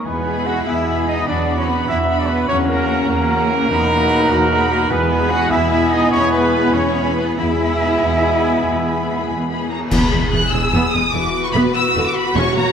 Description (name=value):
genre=cinematic, heroic adventure film score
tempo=98 BPM (dotted quarters)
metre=12/8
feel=straight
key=E lydian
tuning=A4 = 440 Hz
part: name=dark cor anglais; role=second line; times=0.0-9.7 s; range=F#5 to G#5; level=-29 LUFS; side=right 1 dB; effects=none
part: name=concert harp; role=arpeggios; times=0.0-12.7 s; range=B2 to B5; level=-28 LUFS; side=left 7 dB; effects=none
part: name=clear trumpet section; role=stabs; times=0.0-9.2 s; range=A#4 to F#5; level=-20 LUFS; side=right 2 dB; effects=none
part: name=rich studio cello section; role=bass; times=0.0-12.6 s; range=E2 to F#4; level=-24 LUFS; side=right 2 dB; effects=none
part: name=mellow flute section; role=second line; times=0.1-9.7 s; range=A#5 to B5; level=-28 LUFS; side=left 3 dB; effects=none
part: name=warm clarinet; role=second line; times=0.1-9.7 s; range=B3 to D#4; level=-26 LUFS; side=left 1 dB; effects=none
part: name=bright trombone section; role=sustained chords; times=0.1-9.7 s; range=B2 to G#3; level=-27 LUFS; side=right 3 dB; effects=none
part: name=rich symphonic double bass section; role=bass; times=0.1-12.6 s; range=E1 to E2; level=-24 LUFS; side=right 2 dB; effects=none
part: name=warm symphonic viola section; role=accompaniment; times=0.2-12.7 s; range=D3 to G#4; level=-24 LUFS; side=right 1 dB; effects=none
part: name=rich symphonic violin section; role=melody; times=0.3-12.7 s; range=A#5 to F#6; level=-24 LUFS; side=left 1 dB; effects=none
part: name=warm symphonic violin section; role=second line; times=0.3-12.7 s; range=F#4 to C#5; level=-29 LUFS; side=equal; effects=none
part: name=clear French horn section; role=sustained chords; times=1.3-9.6 s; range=B3 to G#4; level=-24 LUFS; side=left 4 dB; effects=none
part: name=cymbal swell, clash cymbals and concert bass drum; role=percussion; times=7.4-10.7 s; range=none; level=-24 LUFS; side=left 1 dB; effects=none
room=wet scoring stage reverb, RT60 1.8 s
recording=none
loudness=-14 LUFS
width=side -7 dB against mid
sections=0.0-9.9 A section; 9.9-12.7 B section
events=band accent 9.9-10.3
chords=0.1 E; 1.3 Bm/E; 2.5 F#/E; 3.7 B/E; 4.9 E; 11.1 Bm/E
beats=| 0.05 0.67 1.28 1.89 | 2.50 3.10 3.70 4.30 | 4.91 5.52 6.12 6.74 | 7.38 8.02 8.65 9.28 | 9.91 10.52 11.13 11.74 | 12.35